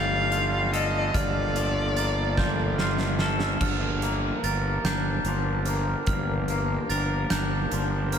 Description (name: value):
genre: post-rock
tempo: 49 BPM (dotted quarters)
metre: 6/8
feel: straight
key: unclear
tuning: A4 = 439 Hz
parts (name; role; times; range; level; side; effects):
- warm violin; melody; 0.0-2.8 s; D5 to F5; -28 LUFS; left 2 dB; analog delay
- brassy analog pad; sustained chords; 0.0-8.2 s; D3 to F5; -35 LUFS; equal; chorus
- glockenspiel with hard plastic mallets; arpeggios; 0.0-8.2 s; F6 to A6; -34 LUFS; right 5 dB; analog delay
- twangy electric guitar; arpeggios; 0.0-8.2 s; G2 to Bb4; -31 LUFS; left 2 dB; wide subtle chorus, analog delay
- fuzz fingered electric bass; bass; 0.0-8.2 s; G1; -27 LUFS; equal; overdrive
- huge arena drum kit; drums; 0.3-8.2 s; crash cymbal, hi-hat, kick drum, snare drum; -30 LUFS; right 1 dB; none
room: moderate lush hall reverb, RT60 3.4 s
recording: dreamy mix soaked in reverb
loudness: -23 LUFS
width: side -8 dB against mid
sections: 0.0-3.6 A section; 3.6-8.2 B section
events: drum fill 2.4-3.6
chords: 0.0 Dm/G; 1.1 Bbmaj7/G